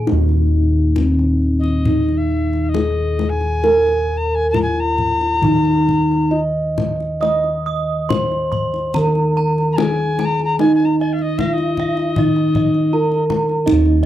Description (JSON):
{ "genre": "Javanese gamelan", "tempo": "67-82 BPM", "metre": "4/4", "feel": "straight", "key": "Eb pelog barang", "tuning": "A4 = 440 Hz", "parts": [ { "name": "gamelan-type bronze metallophone", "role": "melody", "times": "0.0-14.1 s", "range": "C4+20c to Eb5", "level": "-19 LUFS", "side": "equal", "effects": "none" }, { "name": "gamelan-type bronze metallophone", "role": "arpeggios", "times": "0.0, 7.2-14.1 s", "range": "Eb5 to Eb6", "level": "-26 LUFS", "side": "right 3 dB", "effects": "none" }, { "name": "gamelan-type bossed gongs", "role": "bass", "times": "0.0-14.1 s", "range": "Eb2 to Eb5", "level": "-18 LUFS", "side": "right 1 dB", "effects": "none" }, { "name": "kendang", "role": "percussion", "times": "0.1-14.1 s", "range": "none", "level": "-24 LUFS", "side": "left 4 dB", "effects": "none" }, { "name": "reedy soprano recorder", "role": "second line", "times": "1.6-13.2 s", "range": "Eb5 to Bb5", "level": "-23 LUFS", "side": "left 3 dB", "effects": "none" } ], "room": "light reverb", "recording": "dry, close 1970s-style studio recording", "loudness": "-15 LUFS", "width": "side -12 dB against mid", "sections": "0.1-13.7 A section", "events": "none", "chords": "none", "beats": "| 0.08 0.97 1.86 2.75 | 3.65 4.54 5.43 6.32 | 7.22 8.10 8.95 9.79 | 10.60 11.40 12.17 12.93 | 13.67" }